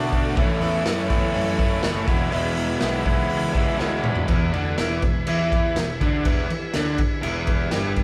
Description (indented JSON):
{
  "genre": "garage rock duo or trio",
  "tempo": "122 BPM",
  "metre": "4/4",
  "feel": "straight",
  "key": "E mixolydian",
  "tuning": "A4 = 444 Hz",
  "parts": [
    { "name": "combo organ", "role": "sustained chords", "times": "0.0-8.0 s", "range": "E4 to B5", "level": "-35 LUFS", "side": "equal", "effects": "none" },
    { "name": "crunchy overdriven guitar", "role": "riff", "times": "0.0-8.0 s", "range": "E2 to F#4", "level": "-26 LUFS", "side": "equal", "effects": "none" },
    { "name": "fuzz picked electric bass", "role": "bass", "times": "0.0-8.0 s", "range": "E1 to B2", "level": "-31 LUFS", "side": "equal", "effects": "overdrive, tube saturation" },
    { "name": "raw garage drum kit", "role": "drums", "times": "0.1-8.0 s", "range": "crash cymbal, hi-hat, kick drum, snare drum, toms", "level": "-26 LUFS", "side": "equal", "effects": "none" }
  ],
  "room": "moderate large studio reverb, RT60 1.3 s",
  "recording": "band playing live in one room",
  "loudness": "-22 LUFS",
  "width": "mono",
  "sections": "0.0-4.3 A section; 4.3-8.0 B section",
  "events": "transistor combo organ fill 3.3-4.3; drum fill 3.8-4.3",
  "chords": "0.4 A; 2.1 E"
}